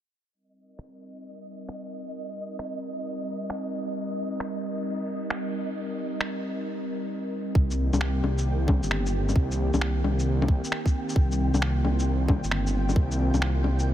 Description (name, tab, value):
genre	future garage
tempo	133 BPM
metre	4/4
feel	swing 65% on 16ths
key	C minor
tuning	A4 = 441 Hz
part	warbly tape-like pad	sustained chords	0.3-13.9 s	Eb3 to Bb4	-31 LUFS	equal	chorus, built-in reverb, sidechain pumping
part	flickering grainy texture	texture	1.1-13.9 s	Eb5 to G5	-39 LUFS	equal	built-in reverb
part	electronic finger snaps, shaker and bongos	drums	0.8-13.9 s	none	-31 LUFS	left 2 dB	none
part	swelling detuned saw bass	bass	7.6-13.9 s	G1 to C2	-25 LUFS	equal	tube saturation, sidechain pumping
part	electronic kick drum	drums	7.6-13.1 s	none	-22 LUFS	equal	none
room	light reverb, digital ambience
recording	low-pass filter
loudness	-24 LUFS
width	side -12 dB against mid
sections	0.3-7.6 A section; 7.6-13.9 B section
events	filter sweep on ambient pad 0.3-7.6; filter sweep 0.3-7.6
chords	0.3 Cm7